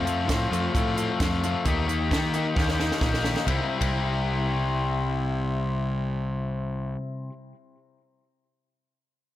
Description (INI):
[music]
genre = indie rock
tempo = 132 BPM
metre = 4/4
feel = straight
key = unclear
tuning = A4 = 444 Hz
[part]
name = crunchy overdriven guitar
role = riff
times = 0.0-7.3 s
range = C3 to G4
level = -26 LUFS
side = left 3 dB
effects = analog delay
[part]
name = fuzz picked electric bass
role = bass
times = 0.0-7.0 s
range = Bb1 to Eb3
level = -29 LUFS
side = right 1 dB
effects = overdrive
[part]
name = compact cocktail drum kit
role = drums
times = 0.1-3.9 s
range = hi-hat, kick drum, ride cymbal, snare drum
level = -28 LUFS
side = right 1 dB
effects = analog delay
[sound]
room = little or no reverb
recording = echo-heavy mix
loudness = -24 LUFS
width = side -13 dB against mid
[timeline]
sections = 0.0-3.5 A section; 3.5-7.1 B section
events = drum fill 2.5-3.5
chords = 0.0 F; 1.6 Eb; 3.5 C